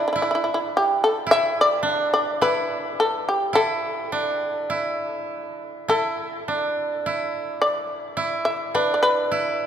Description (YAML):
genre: japanese traditional, Japanese chamber music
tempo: 53 BPM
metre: 2/4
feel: rubato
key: unclear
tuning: A4 = 445 Hz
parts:
  - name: shamisen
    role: melody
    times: 0.0-9.7 s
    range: E4 to E5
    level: -22 LUFS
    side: left 1 dB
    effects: none
  - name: koto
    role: second line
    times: 0.0-9.7 s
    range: D4 to E4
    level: -25 LUFS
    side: right 3 dB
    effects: none
room: moderate cathedral reverb, RT60 5.7 s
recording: minimal, uncompressed stereo recording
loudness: -20 LUFS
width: side -9 dB against mid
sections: 0.0-9.7 A section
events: none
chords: none